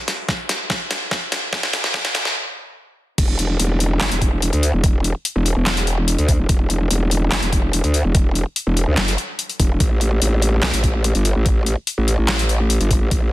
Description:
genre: heavy wobble dubstep.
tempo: 145 BPM.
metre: 4/4.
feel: half-time.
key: E minor.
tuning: A4 = 441 Hz.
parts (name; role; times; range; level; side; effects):
dubstep drum kit; drums; 0.1-13.2 s; crash cymbal, handclaps, hi-hat, snare drum; -21 LUFS; left 1 dB; overdrive, high-pass filter on snare, small room ambience, high-pass filter on hats, high-pass filter on cymbals.
electronic kick drum; drums; 0.3-13.2 s; none; -18 LUFS; equal; overdrive, small room ambience.
growl bass; bass; 3.2-13.3 s; E1 to D2; -18 LUFS; equal; chorus, overdrive.
room: light reverb.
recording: dense, heavily limited modern master, high-pass filter.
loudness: -16 LUFS.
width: side -16 dB against mid.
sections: 0.0-3.2 A section; 3.2-13.3 B section.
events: build-up 0.0-3.2; drum fill 0.0-2.4; stop 2.4-3.2; drop 3.2-13.3.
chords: none.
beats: 0.29 0.70 1.11 | 1.53 1.94 2.35 2.77 | 3.18 3.60 4.01 4.42 | 4.84 5.25 5.67 6.08 | 6.49 6.91 7.32 7.73 | 8.15 8.56 8.97 9.39 | 9.80 10.22 10.63 11.04 | 11.46 11.87 12.29 12.70 | 13.11.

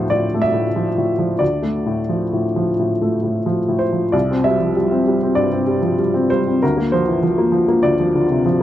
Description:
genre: neoclassical minimalist piano.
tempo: 87-98 BPM.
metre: 4/4.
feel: rubato.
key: unclear.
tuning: A4 = 440 Hz.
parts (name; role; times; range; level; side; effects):
clear upright piano; solo; 0.0-8.6 s; C2 to E5; -15 LUFS; equal; none.
room: light reverb.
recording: dry, close 1970s-style studio recording.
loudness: -15 LUFS.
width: side -12 dB against mid.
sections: 0.0-4.1 A section; 4.1-8.6 B section.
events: none.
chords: 0.0 Dm; 4.1 C; 6.6 Bb/D.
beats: 0.11 0.75 | 1.41 2.09 2.78 3.46 | 4.14 4.77 5.39 6.00 | 6.63 7.24 7.85 8.46.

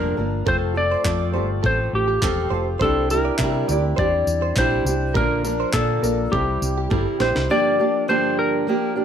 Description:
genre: acoustic pop.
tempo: 102 BPM.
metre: 4/4.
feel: swing 55% on 16ths.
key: F major.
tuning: A4 = 439 Hz.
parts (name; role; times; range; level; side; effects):
clean lap steel guitar; melody; 0.0-9.0 s; G4 to D5; -23 LUFS; left 1 dB; plate reverb.
fingerpicked steel-string acoustic guitar; accompaniment; 0.0-9.0 s; G2 to Bb4; -24 LUFS; right 2 dB; none.
warm upright piano; accompaniment; 0.0-7.5 s; G3 to D5; -31 LUFS; left 4 dB; none.
hollow-body short-scale fingered electric bass; bass; 0.0-7.5 s; E1 to C3; -24 LUFS; equal; none.
direct-recorded clean electric guitar; arpeggios; 0.5-7.4 s; G4 to E5; -29 LUFS; right 6 dB; analog chorus.
breakbeat sampler-style drum kit; drums; 0.5-7.5 s; handclaps, kick drum, snare drum, tambourine; -26 LUFS; equal; none.
room: moderate studio reverb, RT60 0.8 s.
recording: none.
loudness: -18 LUFS.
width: side -8 dB against mid.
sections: 0.0-7.5 A section; 7.5-9.0 B section.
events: drum fill 6.9-7.5.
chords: 0.5 F; 2.8 Cadd9; 5.2 Bb; 6.3 C; 7.5 Gm7.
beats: | 0.47 1.05 1.64 2.23 | 2.81 3.40 3.98 4.57 | 5.16 5.74 6.33 6.91 | 7.50 8.08 8.67.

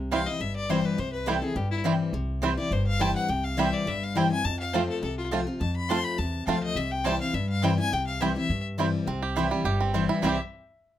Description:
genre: bluegrass.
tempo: 208 BPM.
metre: 4/4.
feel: straight.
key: C major.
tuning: A4 = 442 Hz.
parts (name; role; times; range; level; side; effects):
picked steel-string acoustic guitar; accompaniment; 0.0-10.4 s; F2 to F4; -28 LUFS; left 3 dB; none.
upright bass; bass; 0.0-10.4 s; G1 to G2; -32 LUFS; equal; none.
clear fiddle; melody; 0.1-10.4 s; E4 to C6; -31 LUFS; left 4 dB; none.
bluegrass banjo; arpeggios; 0.1-10.4 s; E3 to G4; -29 LUFS; right 5 dB; none.
mandolin; stabs; 0.1-10.4 s; C4 to A5; -31 LUFS; right 6 dB; none.
room: light reverb.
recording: close, detailed microphones.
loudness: -24 LUFS.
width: side -12 dB against mid.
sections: 0.0-9.1 A section; 9.1-10.2 B section.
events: none.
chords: 0.0 C; 4.4 F; 6.8 C.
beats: 0.12 0.41 0.70 | 0.98 1.27 1.56 1.85 | 2.14 2.43 2.72 3.00 | 3.29 3.58 3.87 4.16 | 4.45 4.74 5.03 5.32 | 5.60 5.89 6.18 6.47 | 6.76 7.05 7.34 7.63 | 7.92 8.20 8.49 8.78 | 9.07 9.36 9.65 9.94 | 10.23.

